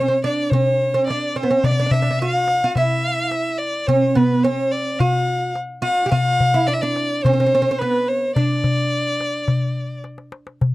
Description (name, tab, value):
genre	Arabic maqam ensemble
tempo	107 BPM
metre	4/4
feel	straight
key	D maqam rast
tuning	A4 = 439 Hz
part	clear violin	melody	0.0-10.0 s	B4 to F#5-48c	-20 LUFS	left 1 dB	none
part	oud	second line	0.0-10.0 s	B3 to G4	-22 LUFS	right 3 dB	none
part	darbuka	percussion	0.1-10.7 s	none	-21 LUFS	left 2 dB	none
room	light reverb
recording	dry, close 1970s-style studio recording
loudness	-17 LUFS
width	side -18 dB against mid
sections	0.0-10.6 A section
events	drum fill 10.0-10.6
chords	none